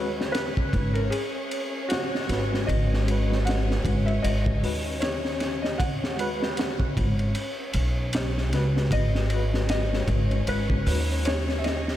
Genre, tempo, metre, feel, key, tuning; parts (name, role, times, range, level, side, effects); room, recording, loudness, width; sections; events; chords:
trip hop; 77 BPM; 4/4; swing 58% on 16ths; G# minor; A4 = 436 Hz
felt-muted upright piano; melody; 0.0-12.0 s; F#4 to F#5; -33 LUFS; left 1 dB; vintage 12-bit sampler grit, tape echo
tine electric piano; accompaniment; 0.0-11.0 s; G#3 to B4; -33 LUFS; left 1 dB; medium stereo tremolo, vintage 12-bit sampler grit, tape echo
warm symphonic violin section; sustained chords; 0.0-12.0 s; C#4 to C#5; -34 LUFS; left 1 dB
upright bass; bass; 0.0-12.0 s; G#1 to D#2; -26 LUFS; equal
crunchy breakbeat drum kit; drums; 0.2-12.0 s; hi-hat, kick drum, ride cymbal, snare drum; -28 LUFS; equal
light reverb; -23 LUFS; side -12 dB against mid
0.0-12.0 A section
0.0 G#m7